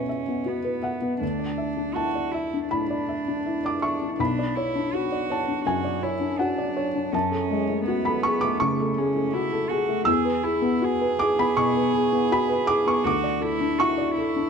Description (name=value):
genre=neoclassical piano and strings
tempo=81 BPM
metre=4/4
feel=rubato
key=B dorian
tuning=A4 = 439 Hz
part: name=rich cello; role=second line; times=0.0-14.5 s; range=A3 to G#4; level=-28 LUFS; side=right 6 dB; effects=slapback echo
part: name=felt-muted upright piano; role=accompaniment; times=0.0-14.5 s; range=B1 to E6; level=-23 LUFS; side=left 2 dB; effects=none
room=light reverb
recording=dark, warm production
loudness=-22 LUFS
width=side -6 dB against mid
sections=0.0-14.5 A section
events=none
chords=0.0 Eadd9; 1.2 Dsus2; 4.2 Bmadd9; 7.1 F#madd9; 10.1 Eadd9; 13.1 Dsus2